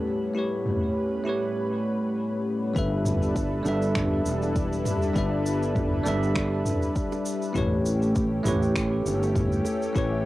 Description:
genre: sunset chillout.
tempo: 100 BPM.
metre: 4/4.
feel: swing 55% on 16ths.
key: G lydian.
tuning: A4 = 439 Hz.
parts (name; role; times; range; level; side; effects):
bell-like tine electric piano; accompaniment; 0.0-10.3 s; G3 to E5; -27 LUFS; equal; auto-pan, cassette tape, tape echo.
lush unison pad; sustained chords; 0.0-10.3 s; A2 to B4; -30 LUFS; equal; chorus, cassette tape.
drifting glass-harmonics texture; texture; 0.0-1.6 s; B5; -54 LUFS; right 5 dB; chorus, built-in reverb, cassette tape.
deep house drum kit; drums; 0.1-10.1 s; cabasa, finger snaps, toms; -31 LUFS; equal; overdrive, low-pass filter on perc, cassette tape, low-pass filter on toms, low-pass filter on snare, low-pass filter on room.
fretless electric bass; bass; 2.8-10.3 s; E1 to A1; -27 LUFS; equal; none.
electronic kick drum; drums; 2.8-10.1 s; none; -30 LUFS; equal; overdrive, cassette tape.
bongos; percussion; 4.4-9.8 s; none; -38 LUFS; right 6 dB; none.
room: moderate booth ambience, RT60 0.3 s.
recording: home recording on cassette.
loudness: -23 LUFS.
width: side -16 dB against mid.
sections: 0.0-2.8 A section; 2.8-10.3 B section.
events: none.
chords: 0.0 A7; 2.8 G6; 7.6 A7.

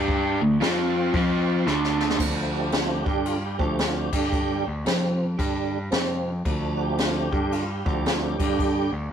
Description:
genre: blues rock power trio and southern rock.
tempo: 113 BPM.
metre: 4/4.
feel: swing 63% on 8ths.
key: D minor.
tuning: A4 = 442 Hz.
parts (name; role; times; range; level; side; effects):
tonewheel organ; sustained chords; 0.0-8.9 s; C3 to G5; -27 LUFS; right 2 dB; slow rotary speaker, chorus vibrato.
biting overdriven guitar; riff; 0.0-2.2 s; D3 to G4; -22 LUFS; equal; none.
growling picked electric bass; bass; 0.0-9.1 s; D2 to G2; -28 LUFS; left 1 dB; overdrive.
jazz brush drum kit; drums; 0.1-8.7 s; crash cymbal, hi-hat, kick drum, snare drum; -27 LUFS; left 1 dB; none.
room: moderate small room reverb, RT60 0.5 s.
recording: rough rehearsal-room recording.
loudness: -22 LUFS.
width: side -8 dB against mid.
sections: 0.0-2.2 A section; 2.2-9.1 B section.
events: drum fill 1.7-2.2; tonewheel organ solo 2.2-9.1.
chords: 0.3 D5; 0.6 F5; 1.7 Dm; 3.0 G5; 3.5 Dm; 4.1 G5; 4.6 N.C.; 4.9 F5; 5.4 G5; 5.9 F5; 6.5 Dm; 7.2 G5; 7.8 Dm; 8.3 G5; 8.8 N.C..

